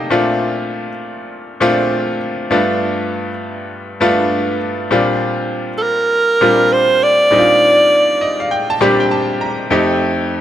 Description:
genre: R&B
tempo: 100 BPM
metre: 4/4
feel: swing 63% on 16ths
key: unclear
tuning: A4 = 441 Hz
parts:
  - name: bright grand piano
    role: accompaniment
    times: 0.0-10.4 s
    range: F2 to Bb5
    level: -15 LUFS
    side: left 1 dB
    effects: none
  - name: bright alto saxophone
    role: melody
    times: 5.8-8.8 s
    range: A4 to D5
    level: -11 LUFS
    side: right 1 dB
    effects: none
room: moderate lush hall reverb, RT60 2.3 s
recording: none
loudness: -12 LUFS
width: side -11 dB against mid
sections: 0.0-4.9 A section; 4.9-10.4 B section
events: grand piano fill 7.9-9.7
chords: 0.1 Bbmaj7; 2.5 G7; 4.9 Bb6; 9.7 F7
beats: | 0.10 0.70 1.30 1.90 | 2.50 3.10 3.70 4.30 | 4.90 5.50 6.10 6.70 | 7.30 7.90 8.50 9.10 | 9.70 10.30

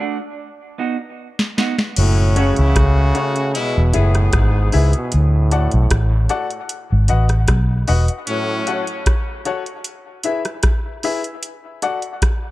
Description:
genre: dub reggae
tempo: 76 BPM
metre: 4/4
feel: straight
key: F# minor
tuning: A4 = 438 Hz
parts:
  - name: clean electric guitar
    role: accompaniment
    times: 0.0-2.5 s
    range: A3 to F#4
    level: -26 LUFS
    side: right 6 dB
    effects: dub echo
  - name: soft vintage rhythm box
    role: drums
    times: 1.4-12.4 s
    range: crash cymbal, hi-hat, kick drum, rim click, snare drum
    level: -20 LUFS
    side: equal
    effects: none
  - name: clear trombone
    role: melody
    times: 2.0-8.6 s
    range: G#2 to C#3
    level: -24 LUFS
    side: right 2 dB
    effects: dub echo
  - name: warm horn section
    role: second line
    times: 2.0-8.8 s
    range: A2 to G#4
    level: -25 LUFS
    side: left 3 dB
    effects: dub echo
  - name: vintage muted fingered electric bass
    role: bass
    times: 2.0-8.1 s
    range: E1 to D2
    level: -14 LUFS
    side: equal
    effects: none
  - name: warm upright piano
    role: stabs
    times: 2.4-12.0 s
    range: C#4 to F#5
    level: -25 LUFS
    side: left 5 dB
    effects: dub echo
room: light reverb, studio reverb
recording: none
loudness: -15 LUFS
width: side -17 dB against mid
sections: 0.0-2.0 A section; 2.0-12.5 B section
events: break 0.0-2.0, 8.3-12.5; drum fill 0.4-2.0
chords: 0.4 B; 2.0 F#m; 3.5 E; 5.1 D; 6.7 B; 8.3 F#m; 9.9 E; 11.4 D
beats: 0.39 1.18 | 1.97 2.75 3.54 4.33 | 5.12 5.91 6.70 7.49 | 8.28 9.06 9.85 10.64 | 11.43 12.22

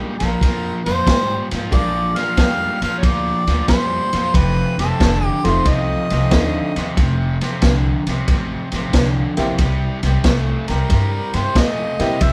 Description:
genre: electric blues shuffle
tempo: 91 BPM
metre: 4/4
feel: swing 67% on 8ths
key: F mixolydian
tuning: A4 = 441 Hz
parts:
  - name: tack piano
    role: accompaniment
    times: 0.0-12.2 s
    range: Ab3 to G4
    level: -27 LUFS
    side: equal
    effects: none
  - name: biting overdriven guitar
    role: riff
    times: 0.0-12.3 s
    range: F2 to A3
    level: -26 LUFS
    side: equal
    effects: none
  - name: upright bass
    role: bass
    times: 0.0-12.3 s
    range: F1 to Bb2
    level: -24 LUFS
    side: equal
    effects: none
  - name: mellow harmonica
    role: melody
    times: 0.2-12.3 s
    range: A4 to F5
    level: -24 LUFS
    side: equal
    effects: overdrive
  - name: crunchy breakbeat drum kit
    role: drums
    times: 0.2-12.3 s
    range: kick drum, ride cymbal, snare drum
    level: -22 LUFS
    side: equal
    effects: none
room: moderate studio reverb, RT60 0.5 s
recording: band playing live in one room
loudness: -18 LUFS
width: mono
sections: 0.0-12.3 A section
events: none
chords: 0.0 Bb7; 4.3 F7; 9.6 C7(no3)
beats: 0.41 1.06 | 1.72 2.38 3.03 3.69 | 4.35 5.00 5.66 6.31 | 6.97 7.63 8.28 8.94 | 9.59 10.25 10.90 11.56 | 12.21

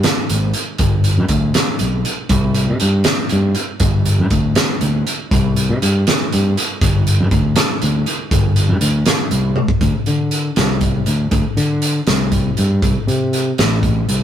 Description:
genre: math rock and midwest emo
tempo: 80 BPM (dotted quarters)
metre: 6/8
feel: straight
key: G major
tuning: A4 = 442 Hz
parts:
  - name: loose indie drum kit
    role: drums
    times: 0.0-14.2 s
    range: hi-hat, kick drum, snare drum, toms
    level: -17 LUFS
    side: equal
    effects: none
  - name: growling fingered electric bass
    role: bass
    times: 0.3-14.2 s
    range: G1 to D3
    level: -16 LUFS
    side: equal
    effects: overdrive
room: light reverb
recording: rough rehearsal-room recording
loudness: -14 LUFS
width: side -10 dB against mid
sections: 0.0-9.8 A section; 9.8-14.2 B section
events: drum fill 9.6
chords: none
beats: 0.06 | 0.81 1.56 | 2.31 3.07 | 3.82 4.57 | 5.32 6.07 | 6.82 7.57 | 8.32 9.07 | 9.83 10.58 | 11.33 12.08 | 12.84 13.59

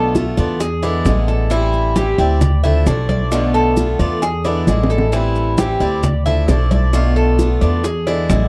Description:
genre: latin, Cuban son and guajira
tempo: 133 BPM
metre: 4/4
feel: straight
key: unclear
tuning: A4 = 440 Hz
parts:
  - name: picked swing-style acoustic guitar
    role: accompaniment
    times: 0.0-8.5 s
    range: B2 to F4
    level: -23 LUFS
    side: equal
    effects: none
  - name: Cuban tres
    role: arpeggios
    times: 0.0-8.5 s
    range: E4 to E5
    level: -23 LUFS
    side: equal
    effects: tape echo
  - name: upright bass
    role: bass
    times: 0.0-8.5 s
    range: A1 to E2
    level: -19 LUFS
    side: equal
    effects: none
  - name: congas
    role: percussion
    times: 0.1-8.5 s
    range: none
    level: -24 LUFS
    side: equal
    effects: none
  - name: bongos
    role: percussion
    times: 0.2-8.5 s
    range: none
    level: -25 LUFS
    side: equal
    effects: none
  - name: maracas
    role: percussion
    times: 0.2-8.5 s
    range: none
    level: -38 LUFS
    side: equal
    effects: none
room: little or no reverb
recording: dry, close 1970s-style studio recording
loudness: -16 LUFS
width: mono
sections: 0.0-8.5 A section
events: drum fill 4.7-5.1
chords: 0.0 Bm7b5; 0.6 E7; 1.5 Am7; 2.4 Bm7b5; 4.2 E7; 5.1 Am7; 6.0 Bm7b5; 7.8 E7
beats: 0.15 0.60 1.06 | 1.51 1.96 2.41 2.86 | 3.32 3.77 4.22 4.67 | 5.13 5.58 6.03 6.48 | 6.94 7.39 7.84 8.30

